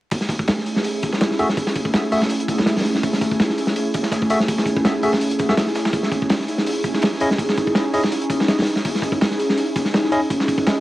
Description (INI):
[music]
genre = drum and bass, jungle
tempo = 165 BPM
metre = 4/4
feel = swing 54% on 16ths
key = F# dorian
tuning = A4 = 440 Hz
[part]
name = ethereal airy pad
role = sustained chords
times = 0.4-10.8 s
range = A3 to G#4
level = -21 LUFS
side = equal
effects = ensemble chorus, built-in reverb, cassette tape
[part]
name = crunchy breakbeat drum kit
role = drums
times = 0.1-10.8 s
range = hi-hat, kick drum, snare drum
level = -21 LUFS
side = equal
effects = high-pass filter on kick, cassette tape, high-pass filter on hats, high-pass filter on snare, high-pass filter on room
[part]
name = dusty soul sampler-style drum kit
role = drums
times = 0.1-10.8 s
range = hi-hat, snare drum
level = -32 LUFS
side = right 1 dB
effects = high-pass filter on hats, cassette tape, high-pass filter on snare
[part]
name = barky tine electric piano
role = stabs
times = 1.4-10.2 s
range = A3 to E5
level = -23 LUFS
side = left 1 dB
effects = medium stereo tremolo, vintage 12-bit sampler grit, low-pass filter, cassette tape, dub echo
[sound]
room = moderate studio reverb, RT60 0.6 s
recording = home recording on cassette, vinyl crackle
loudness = -17 LUFS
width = side -16 dB against mid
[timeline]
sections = 0.1-10.8 A section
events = none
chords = 0.1 F#m9 (rootless); 5.9 C#madd9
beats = | 0.12 0.48 0.85 1.21 | 1.57 1.94 2.30 2.67 | 3.03 3.39 3.76 4.12 | 4.48 4.85 5.21 5.58 | 5.94 6.30 6.67 7.03 | 7.39 7.76 8.12 8.48 | 8.85 9.21 9.57 9.94 | 10.30 10.67